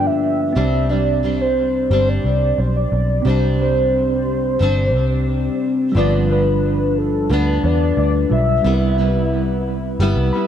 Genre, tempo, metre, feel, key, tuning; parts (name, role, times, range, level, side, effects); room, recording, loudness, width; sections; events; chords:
indie pop, bedroom pop; 89 BPM; 4/4; straight; C major; A4 = 438 Hz
warm velvety synth lead; melody; 0.0-9.3 s; A4 to E5; -21 LUFS; equal; wide subtle chorus, analog delay
fingerpicked plugged-in steel-string acoustic guitar; accompaniment; 0.0-10.5 s; G2 to E4; -21 LUFS; left 2 dB; wide subtle chorus, warbly pitch drift, analog delay
tine electric piano; accompaniment; 0.0-10.5 s; G3 to B5; -24 LUFS; right 4 dB; overdrive, fast stereo tremolo, analog delay
vintage muted picked electric bass; bass; 0.0-10.3 s; G1 to E2; -19 LUFS; equal
light reverb; echo-heavy mix; -15 LUFS; side -9 dB against mid
0.0-10.5 A section
tine electric piano fill 10.0-10.5
0.0 G7; 0.6 Csus2; 6.0 G7; 8.6 Cmaj7